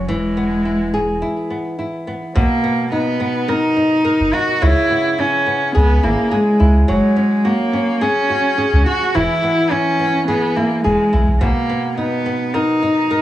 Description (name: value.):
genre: folktronica.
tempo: 106 BPM.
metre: 4/4.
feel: straight.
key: B major.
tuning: A4 = 441 Hz.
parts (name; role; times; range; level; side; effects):
warm cello; melody; 0.0-13.2 s; G#3 to F#4; -16 LUFS; equal; none.
flamenco guitar; arpeggios; 0.0-13.2 s; B2 to A#4; -20 LUFS; equal; vintage 12-bit sampler grit, digital delay.
warm sub bass; bass; 0.0-11.5 s; E1 to C#2; -16 LUFS; equal; none.
room: moderate studio reverb, RT60 0.6 s.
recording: small room ambience.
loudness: -14 LUFS.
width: side -13 dB against mid.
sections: 0.0-2.4 A section; 2.4-13.2 B section.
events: break 1.2-2.4.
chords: 0.1 E; 2.4 Bmaj7; 4.6 C#m7; 6.9 F#add9; 9.1 E; 11.4 Bmaj7.